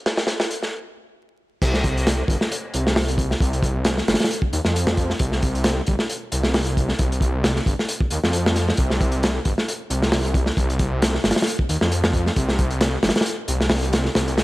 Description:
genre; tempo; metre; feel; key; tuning
breakbeat, breaks; 134 BPM; 4/4; swing 55% on 16ths; C minor pentatonic; A4 = 440 Hz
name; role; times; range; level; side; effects
crunchy breakbeat drum kit; drums; 0.1-14.4 s; crash cymbal, hi-hat, kick drum, snare drum; -20 LUFS; equal; high-pass filter on kick, high-pass filter on hats, high-pass filter on cymbals, high-pass filter on snare, high-pass filter on room
detuned saw bass; bass; 1.6-14.4 s; G1 to F2; -22 LUFS; equal; none
room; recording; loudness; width
little or no reverb; vinyl crackle; -19 LUFS; side -18 dB against mid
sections
0.0-1.6 A section; 1.6-14.4 B section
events
filter sweep 0.0-1.6; stop 0.7-1.6; drop 1.6-14.4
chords
none

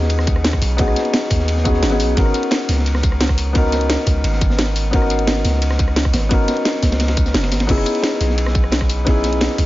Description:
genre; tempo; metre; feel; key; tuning
liquid drum and bass; 174 BPM; 4/4; straight; unclear; A4 = 439 Hz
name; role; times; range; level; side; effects
felt-muted upright piano; accompaniment; 0.0-9.7 s; B3 to A#4; -20 LUFS; left 2 dB; digital delay
long sustained 808-style bass; bass; 0.0-9.7 s; F#1 to D#2; -19 LUFS; equal; none
crunchy breakbeat drum kit; drums; 0.0-9.7 s; ride cymbal, snare drum; -26 LUFS; equal; high-pass filter on cymbals, high-pass filter on snare, high-pass filter on room
garage drum kit; drums; 0.1-9.7 s; crash cymbal, hi-hat, ride cymbal, rim click, snare drum, tambourine; -23 LUFS; equal; none
electronic kick drum; drums; 0.3-9.7 s; none; -18 LUFS; equal; none
room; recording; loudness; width
little or no reverb; nothing above 7.5 kHz; -15 LUFS; side -16 dB against mid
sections
0.0-9.7 A section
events
kick drops out 7.3-7.7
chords
0.0 B6; 2.2 G#m11; 7.7 F#9sus4 (rootless)

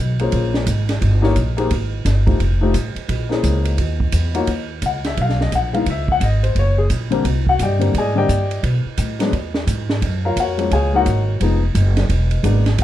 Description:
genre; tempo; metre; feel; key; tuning
jazz, small-group swing and bop; 173 BPM; 4/4; swing 63% on 8ths; unclear; A4 = 440 Hz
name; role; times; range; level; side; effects
upright bass; bass; 0.0-12.8 s; E1 to B2; -18 LUFS; equal; none
warm upright piano; accompaniment; 0.2-12.6 s; D3 to Ab5; -20 LUFS; left 4 dB; none
open jazz drum kit; drums; 0.2-12.8 s; hi-hat, kick drum, ride cymbal, snare drum; -24 LUFS; right 2 dB; none
room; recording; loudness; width
little or no reverb; dark, warm production; -16 LUFS; side -13 dB against mid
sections
0.0-4.5 A section; 4.5-12.8 B section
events
none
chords
0.3 A#m9; 1.0 D#7b9; 1.7 G#maj7; 2.4 F7; 3.1 A#m7b5; 3.8 D#m7; 4.5 Eb5; 5.9 Db5; 6.5 Gb; 7.2 Abmaj9#11; 8.6 Bm7; 9.3 E; 10.0 Gbmaj9; 11.4 Fm7b5; 12.1 E7#11

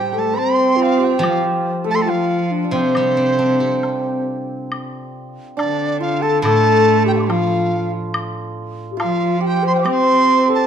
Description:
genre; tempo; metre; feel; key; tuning
chinese traditional, Chinese chamber ensemble; 70 BPM; 2/4; rubato; C zhi mode; A4 = 437 Hz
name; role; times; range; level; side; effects
reedy large dizi; melody; 0.0-10.7 s; C5 to D6; -20 LUFS; right 3 dB; none
hammered dulcimer; second line; 0.0-10.7 s; C4 to C5; -23 LUFS; right 4 dB; none
rich cello; second line; 0.0-10.7 s; C3 to C4; -22 LUFS; right 4 dB; none
steel-string zither; accompaniment; 0.0-9.0 s; A2 to G4; -24 LUFS; left 1 dB; none
low xiao; second line; 0.1-10.7 s; C4 to C5; -20 LUFS; left 8 dB; none
woodblock; percussion; 1.2-10.1 s; none; -28 LUFS; left 2 dB; none
room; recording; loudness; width
moderate recital hall reverb, RT60 1.4 s; dark, warm production; -15 LUFS; side -8 dB against mid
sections
0.0-4.7 A section; 4.7-10.7 B section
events
none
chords
none

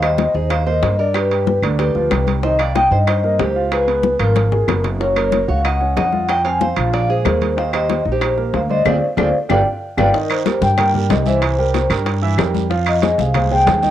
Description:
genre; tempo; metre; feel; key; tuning
Afro-Cuban jazz; 187 BPM; 4/4; straight; unclear; A4 = 440 Hz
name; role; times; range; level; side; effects
vibraphone with soft mallets; melody; 0.0-13.9 s; Bb4 to Ab5; -18 LUFS; left 2 dB; cassette tape
nylon-string guitar; second line; 0.0-10.1 s; F4 to F5; -26 LUFS; right 8 dB; none
clear upright piano; accompaniment; 0.0-13.9 s; D3 to Gb5; -24 LUFS; right 8 dB; none
upright bass; bass; 0.0-13.9 s; Gb1 to G2; -20 LUFS; equal; none
bongos; percussion; 0.0-13.9 s; none; -25 LUFS; left 9 dB; none
claves; percussion; 0.0-13.5 s; none; -27 LUFS; left 9 dB; none
congas; percussion; 0.0-13.9 s; none; -25 LUFS; left 8 dB; none
timbales; percussion; 0.0-13.8 s; none; -26 LUFS; right 10 dB; none
guiro; percussion; 10.1-13.9 s; none; -36 LUFS; right 10 dB; none
room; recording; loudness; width
moderate spring reverb, RT60 1.2 s, studio reverb; home recording on cassette; -14 LUFS; side -11 dB against mid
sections
0.0-10.1 A section; 10.1-13.9 B section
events
drum fill 4.4-5.0, 9.2-10.1; band accent 8.9-10.1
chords
0.0 Eb6; 1.2 G7; 2.4 Cm7; 3.7 Db6; 5.0 Gb6; 6.3 F5; 6.9 Bb5; 7.6 Eb6; 8.9 Dm7b5; 9.5 G7; 10.1 Cm7; 11.4 C7; 12.7 Fm9

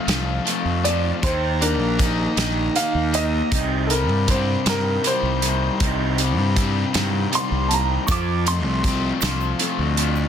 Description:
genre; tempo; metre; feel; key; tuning
indie rock; 53 BPM (dotted quarters); 6/8; straight; unclear; A4 = 440 Hz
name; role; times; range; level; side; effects
warm upright piano; melody; 0.0-10.3 s; D4 to D6; -26 LUFS; right 1 dB; slapback echo
overdriven combo organ; sustained chords; 0.0-10.3 s; C3 to Bb5; -33 LUFS; right 2 dB; none
crunchy overdriven guitar; riff; 0.0-10.3 s; C3 to Eb4; -25 LUFS; left 9 dB; none
raw garage guitar; riff; 0.0-10.3 s; F3 to G4; -28 LUFS; right 6 dB; overdrive, wide subtle chorus, slapback echo
fuzz fingered electric bass; bass; 0.1-10.2 s; Bb1 to G2; -23 LUFS; equal; overdrive
loose indie drum kit; drums; 0.1-10.2 s; hi-hat, kick drum, snare drum; -23 LUFS; right 1 dB; none
egg shaker; percussion; 8.1-10.3 s; none; -32 LUFS; right 20 dB; none
room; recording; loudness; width
light reverb; dense, heavily limited modern master; -18 LUFS; side -8 dB against mid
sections
0.0-10.3 A section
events
upright piano solo 0.0-10.3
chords
0.0 F; 1.2 Eb; 3.5 Cm; 8.1 F

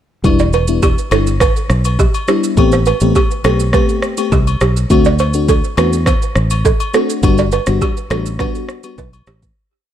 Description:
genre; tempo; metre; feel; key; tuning
afrobeats; 103 BPM; 4/4; straight; E minor; A4 = 440 Hz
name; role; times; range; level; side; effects
FM electric piano with soft pad layer; accompaniment; 0.2-9.0 s; G3 to G4; -17 LUFS; left 4 dB; chorus
fingered electric bass; bass; 0.2-9.5 s; E1 to E2; -15 LUFS; equal; none
afro-pop drum kit; drums; 0.2-9.6 s; kick drum, rim click, shaker; -17 LUFS; equal; none
agogo bells and woodblock; percussion; 0.3-9.3 s; none; -25 LUFS; left 5 dB; none
balafon; riff; 0.4-9.4 s; G4 to D5; -19 LUFS; right 7 dB; digital delay
room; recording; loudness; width
digital ambience; none; -12 LUFS; side -10 dB against mid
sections
0.2-9.6 verse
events
fade-out 7.2-9.6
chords
0.2 Em7; 2.6 Am9; 4.9 D7; 7.2 Gmaj7

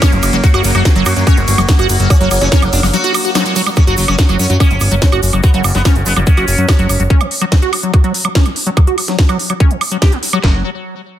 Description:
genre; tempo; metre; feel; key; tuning
psychedelic trance; 144 BPM; 4/4; straight; F# major; A4 = 441 Hz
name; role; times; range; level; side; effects
sitar; melody; 0.0-7.0 s; C#3 to F#4; -20 LUFS; equal; phaser, sidechain pumping, digital delay
overtone-sweeping drone; sustained chords; 0.0-3.8 s; F#3 to A#3; -22 LUFS; right 1 dB; chorus, built-in reverb, sidechain pumping
liquid acid bass; riff; 0.0-10.6 s; E3 to G4; -18 LUFS; left 1 dB; chorus, auto-pan, sidechain pumping, digital delay
drum and bass drum kit; drums; 0.0-10.5 s; kick drum, snare drum; -10 LUFS; equal; none
techno drum kit; drums; 0.0-10.4 s; hi-hat, ride cymbal, snare drum, woodblock; -18 LUFS; right 2 dB; overdrive
egg shaker; percussion; 0.0-7.1 s; none; -28 LUFS; right 4 dB; none
fat analog bass; bass; 0.1-7.1, 10.4-10.6 s; F#1 to F#2; -15 LUFS; equal; none
room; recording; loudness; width
little or no reverb; dense, heavily limited modern master; -10 LUFS; side -11 dB against mid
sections
0.0-3.8 A section; 3.8-10.4 B section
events
drop 0.0-3.8; break 2.9-3.8; band accent 3.4; filter sweep on acid bass 3.8-10.4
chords
0.0 F#5; 10.4 N.C.

